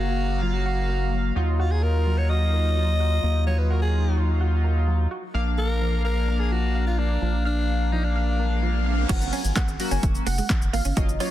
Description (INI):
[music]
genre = dance-pop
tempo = 128 BPM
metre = 4/4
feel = straight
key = F# major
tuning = A4 = 440 Hz
[part]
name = raspy alto saxophone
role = melody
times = 0.0-8.9 s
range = D4 to D#5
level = -30 LUFS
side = left 1 dB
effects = digital delay
[part]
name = chorused polysynth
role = accompaniment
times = 0.0-11.3 s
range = F#3 to E#5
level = -29 LUFS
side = left 2 dB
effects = sidechain pumping
[part]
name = tight sequenced synth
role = arpeggios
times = 0.0-9.0 s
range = E#3 to E#5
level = -36 LUFS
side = right 1 dB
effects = chorus, sidechain pumping, digital delay
[part]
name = round analog bass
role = bass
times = 0.0-11.2 s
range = E#1 to D#2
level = -22 LUFS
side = equal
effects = sidechain pumping
[part]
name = riser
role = sound effects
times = 8.5-9.1 s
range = none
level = -36 LUFS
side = right 3 dB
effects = none
[part]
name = glassy wavetable pluck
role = melody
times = 9.1-11.3 s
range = C#5 to G#5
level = -32 LUFS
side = right 1 dB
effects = chorus, sidechain pumping
[part]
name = direct-recorded clean electric guitar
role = riff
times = 9.1-11.3 s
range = G#3 to F#4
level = -32 LUFS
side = right 8 dB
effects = ensemble chorus
[part]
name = punchy analog drum machine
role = drums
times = 9.1-11.3 s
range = crash cymbal, handclaps, hi-hat, kick drum, shaker, snare drum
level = -24 LUFS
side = equal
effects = overdrive
[sound]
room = digital ambience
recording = dense, heavily limited modern master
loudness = -21 LUFS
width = side -13 dB against mid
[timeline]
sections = 0.0-9.1 A section; 9.1-11.3 B section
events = riser 8.5-9.1; drop 9.1-11.3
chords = 0.0 F#maj7; 1.4 D#madd9; 5.3 A#; 9.1 F#maj7